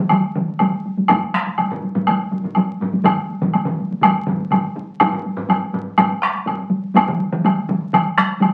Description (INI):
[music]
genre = japanese traditional, taiko drum ensemble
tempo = 123 BPM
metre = 4/4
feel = straight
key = none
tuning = none
[part]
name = taiko ensemble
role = percussion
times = 0.1-8.5 s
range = none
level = -22 LUFS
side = equal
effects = none
[part]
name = taiko ensemble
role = percussion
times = 0.1-8.5 s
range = none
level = -24 LUFS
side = equal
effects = none
[part]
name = woodblock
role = percussion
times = 0.1-8.5 s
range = none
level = -21 LUFS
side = equal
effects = none
[part]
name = taiko ensemble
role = percussion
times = 1.1-6.6 s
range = none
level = -29 LUFS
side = equal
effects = none
[part]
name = taiko ensemble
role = percussion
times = 1.1-7.1 s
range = none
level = -26 LUFS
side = equal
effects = none
[sound]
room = wet club reverb, RT60 0.6 s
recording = very old 78 rpm record, vinyl crackle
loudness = -19 LUFS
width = mono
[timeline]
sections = 0.0-5.0 A section; 5.0-8.5 B section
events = none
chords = none